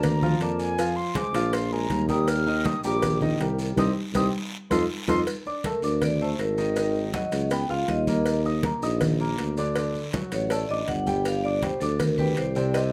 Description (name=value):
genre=Afro-Cuban jazz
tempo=160 BPM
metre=4/4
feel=straight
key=Bb major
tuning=A4 = 440 Hz
part: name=silver concert flute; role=second line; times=0.0-5.2 s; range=Ab5 to F6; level=-33 LUFS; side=equal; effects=none
part: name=warm grand piano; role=accompaniment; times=0.0-12.9 s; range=C3 to F6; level=-32 LUFS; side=equal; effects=none
part: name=warm tuba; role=bass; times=0.0-12.9 s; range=G1 to F2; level=-29 LUFS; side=equal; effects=none
part: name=congas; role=percussion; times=0.0-12.9 s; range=none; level=-32 LUFS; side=equal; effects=none
part: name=cowbell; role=percussion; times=0.0-12.9 s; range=none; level=-35 LUFS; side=equal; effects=none
part: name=guiro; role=percussion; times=0.0-12.9 s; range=none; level=-45 LUFS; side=equal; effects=none
part: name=maracas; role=percussion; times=0.0-12.9 s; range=none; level=-47 LUFS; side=equal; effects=none
part: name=vibraphone with medium hard mallets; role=melody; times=5.7-12.9 s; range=A4 to G5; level=-31 LUFS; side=equal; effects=plate reverb
room=moderate club reverb, RT60 0.8 s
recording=none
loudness=-25 LUFS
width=mono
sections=0.0-5.3 A section; 5.3-12.9 A section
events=flute solo 0.0-5.3; band accent 3.8-5.3; vibraphone solo 5.3-12.9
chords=0.0 Gm7 (rootless); 0.8 Fm; 1.5 Bb5; 2.3 Ebmaj7; 3.8 Cm; 4.5 F7; 5.3 Bbmaj7; 6.8 Ab5; 7.5 Db9; 8.3 Eb5; 9.8 D; 11.3 G5